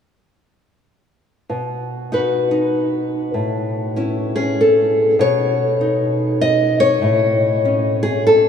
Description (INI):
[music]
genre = folk, solo fingerstyle acoustic guitar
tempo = 98 BPM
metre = 3/4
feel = swing 63% on 8ths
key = B mixolydian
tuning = A4 = 440 Hz
[part]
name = nylon-string guitar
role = solo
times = 1.5-8.5 s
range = A2 to D#5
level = -15 LUFS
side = left 1 dB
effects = none
[sound]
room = wet cathedral reverb, RT60 6.5 s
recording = in a vast, echoing space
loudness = -15 LUFS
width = side -7 dB against mid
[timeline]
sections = 1.5-5.2 A section; 5.2-8.5 B section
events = none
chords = 1.5 B; 3.3 A; 5.2 Badd9; 7.0 A